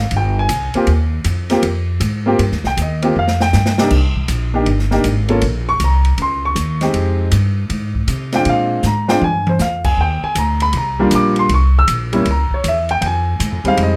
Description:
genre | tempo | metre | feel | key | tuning
jazz, small-group swing and bop | 158 BPM | 4/4 | swing 66% on 8ths | Eb major | A4 = 443 Hz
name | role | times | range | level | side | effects
warm concert grand piano | accompaniment | 0.0-14.0 s | C3 to E6 | -19 LUFS | equal | none
upright bass | bass | 0.0-14.0 s | G1 to C3 | -20 LUFS | equal | none
open jazz drum kit | drums | 0.1-13.9 s | crash cymbal, hi-hat, kick drum, ride cymbal, snare drum, toms | -26 LUFS | equal | none
room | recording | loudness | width
light reverb | none | -16 LUFS | mono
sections
0.0-3.9 A section; 3.9-14.0 A section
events
drum fill 3.1-3.9, 8.8-9.6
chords
0.0 Bb7sus2; 0.9 Eb69; 3.9 Cm9; 5.4 Bbmadd9; 6.2 Abadd11/Db; 6.9 Fm7; 8.5 Bb7; 10.0 Ebmaj9; 11.5 C7b9; 13.0 Fm9

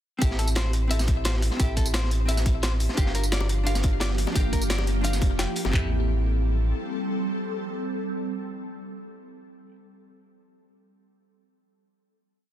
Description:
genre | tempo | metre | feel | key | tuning
liquid drum and bass | 174 BPM | 4/4 | straight | A phrygian | A4 = 438 Hz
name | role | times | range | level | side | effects
vintage hollow-body jazz guitar | accompaniment | 0.2-9.8 s | C4 to F5 | -33 LUFS | right 1 dB | digital delay
clean electric guitar | arpeggios | 0.2-5.9 s | G4 to G5 | -35 LUFS | left 4 dB | ping-pong delay
sub bass with octave | bass | 0.2-6.7 s | F1 to A1 | -25 LUFS | equal | none
crunchy breakbeat drum kit | drums | 0.2-5.7 s | hi-hat, snare drum | -35 LUFS | equal | high-pass filter on hats, studio ambience, high-pass filter on snare, high-pass filter on room
drum and bass drum kit | drums | 0.2-5.8 s | handclaps, kick drum, toms | -24 LUFS | equal | studio ambience
jungle sampler-style drum kit | drums | 0.2-5.6 s | hi-hat, rim click, snare drum, tambourine | -31 LUFS | equal | studio ambience
ethereal airy pad | sustained chords | 3.6-9.3 s | F3 to A4 | -31 LUFS | equal | ensemble chorus, built-in reverb, phaser, sidechain pumping
bongos | percussion | 3.4-5.7 s | none | -38 LUFS | left 8 dB | none
room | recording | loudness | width
little or no reverb | dense, heavily limited modern master | -23 LUFS | side -11 dB against mid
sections
0.2-5.7 drop; 5.7-8.5 final chord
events
drop 0.2-5.7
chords
0.2 Am7; 3.0 Gm7; 5.7 Am7

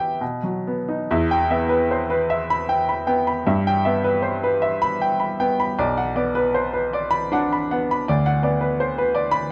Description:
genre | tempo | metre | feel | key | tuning
classical, romantic character piece for solo piano | 77 BPM | 3/4 | uneven beats, rubato | E minor | A4 = 439 Hz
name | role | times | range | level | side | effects
clear baby grand piano | solo | 0.0-9.5 s | B1 to B5 | -21 LUFS | equal | none
room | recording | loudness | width
moderate large studio reverb, RT60 0.8 s | dark, warm production | -21 LUFS | mono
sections
0.0-1.1 A section; 1.1-9.5 A section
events
none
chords
0.2 B; 1.1 Em; 3.4 Em/G; 5.8 Bm; 8.1 Bm/D

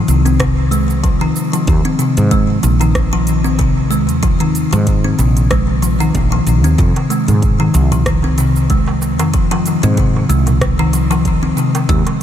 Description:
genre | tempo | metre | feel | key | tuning
organic downtempo | 94 BPM | 4/4 | swing 56% on 16ths | F minor | A4 = 440 Hz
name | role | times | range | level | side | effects
kalimba | arpeggios | 0.0-12.0 s | C3 to C4 | -14 LUFS | left 1 dB | ping-pong delay
woody fretless electric bass | bass | 0.0-12.0 s | Bb1 to Ab2 | -16 LUFS | equal | sidechain pumping
organic electronic drum kit | drums | 0.1-12.2 s | cabasa, hi-hat, rim click | -25 LUFS | right 1 dB | overdrive
electronic kick drum | drums | 0.4-12.0 s | none | -17 LUFS | equal | none
darbuka | percussion | 7.0-12.2 s | none | -25 LUFS | right 3 dB | none
room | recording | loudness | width
light reverb | none | -11 LUFS | side -10 dB against mid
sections
0.0-12.2 A section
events
none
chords
0.0 F5; 1.7 Ebsus4; 6.8 Fm

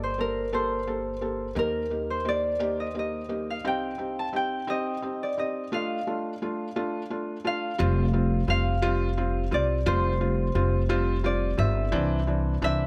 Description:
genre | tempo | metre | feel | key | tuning
six-eight pop ballad | 58 BPM (dotted quarters) | 6/8 | straight | unclear | A4 = 440 Hz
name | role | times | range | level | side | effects
concert harp | melody | 0.0-12.9 s | Bb4 to A5 | -32 LUFS | equal | none
felt-muted upright piano | accompaniment | 0.0-12.9 s | E3 to A4 | -32 LUFS | equal | none
upright bass | bass | 0.0-12.9 s | F1 to Eb2 | -30 LUFS | equal | none
room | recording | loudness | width
light reverb, studio reverb | none | -27 LUFS | mono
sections
0.0-7.8 A section; 7.8-12.9 B section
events
none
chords
0.0 Gmadd9; 1.6 Eb; 3.6 Cm; 5.7 Dm; 7.8 Fsus2; 11.9 Cadd9

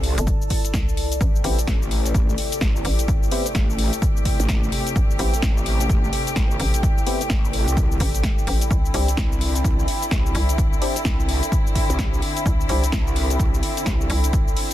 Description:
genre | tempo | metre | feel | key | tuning
bass house | 128 BPM | 4/4 | swing 61% on 16ths | A minor | A4 = 443 Hz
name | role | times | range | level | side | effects
growl bass | bass | 0.0-14.1 s | A1 to C2 | -23 LUFS | equal | chorus, sidechain pumping
house drum kit | drums | 0.0-14.7 s | hi-hat, shaker, snare drum | -28 LUFS | left 2 dB | none
warbly tape-like pad | texture | 0.0-14.7 s | E4 to A5 | -30 LUFS | equal | chorus, built-in reverb, sidechain pumping
hollow knocking FM bass | bass | 0.2-14.6 s | G1 to C2 | -23 LUFS | equal | overdrive, sidechain pumping
electronic kick drum | drums | 0.3-14.4 s | none | -22 LUFS | equal | none
muted studio string section | sustained chords | 1.2-14.7 s | C3 to G4 | -29 LUFS | left 1 dB | sidechain pumping
percussive organ stab | stabs | 1.4-12.8 s | B3 to G4 | -30 LUFS | left 2 dB | analog chorus, sidechain pumping, ping-pong delay
room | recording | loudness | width
little or no reverb | dense, heavily limited modern master | -18 LUFS | side -13 dB against mid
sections
0.0-14.7 A section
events
none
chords
0.0 Cadd9; 1.2 Am7; 8.7 Cadd9

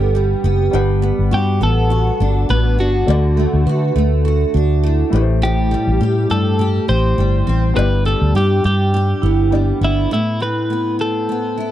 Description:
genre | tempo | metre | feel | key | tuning
acoustic pop | 102 BPM | 4/4 | swing 55% on 16ths | unclear | A4 = 439 Hz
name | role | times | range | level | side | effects
vibraphone with soft mallets | second line | 0.0-5.3, 9.2-10.1 s | D4 to B4 | -21 LUFS | right 12 dB | none
felt-muted upright piano | accompaniment | 0.0-10.1 s | G3 to F#5 | -27 LUFS | left 7 dB | none
picked steel-string acoustic guitar | accompaniment | 0.0-11.7 s | G2 to G4 | -21 LUFS | equal | double-tracked left and right
vintage muted fingered electric bass | bass | 0.0-10.1 s | F#1 to D3 | -16 LUFS | equal | none
twelve-string electric guitar | melody | 1.3-11.7 s | E4 to C5 | -21 LUFS | left 1 dB | none
room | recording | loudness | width
light reverb | dry, close 1970s-style studio recording | -14 LUFS | side -12 dB against mid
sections
0.0-10.1 A section; 10.1-11.7 B section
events
none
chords
0.0 Em7/G; 0.7 Gmaj7; 3.1 D; 5.1 Am7; 7.8 Em7/G; 10.1 Amadd9

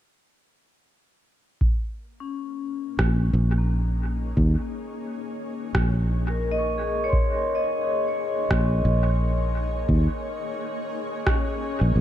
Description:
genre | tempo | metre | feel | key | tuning
ambient dub | 87 BPM | 4/4 | swing 58% on 16ths | Bb minor | A4 = 439 Hz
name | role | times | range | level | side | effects
granular cloud pad | sustained chords | 2.4-12.0 s | Bb3 to Db5 | -35 LUFS | equal | built-in reverb
electronic kick drum | drums | 1.6-11.4 s | none | -24 LUFS | equal | none
vibraphone with medium hard mallets | arpeggios | 2.2-12.0 s | Bb3 to Db6 | -28 LUFS | left 2 dB | low-pass filter, tape echo
fingered electric bass | bass | 3.0-12.0 s | Bb1 to Eb2 | -22 LUFS | equal | tube saturation
electronic rim click | drums | 3.0-11.4 s | none | -31 LUFS | right 1 dB | dub echo
room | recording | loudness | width
light reverb | none | -22 LUFS | side -12 dB against mid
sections
1.6-12.0 A section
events
filter sweep on vibraphone 1.6-12.0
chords
1.6 Bbm7

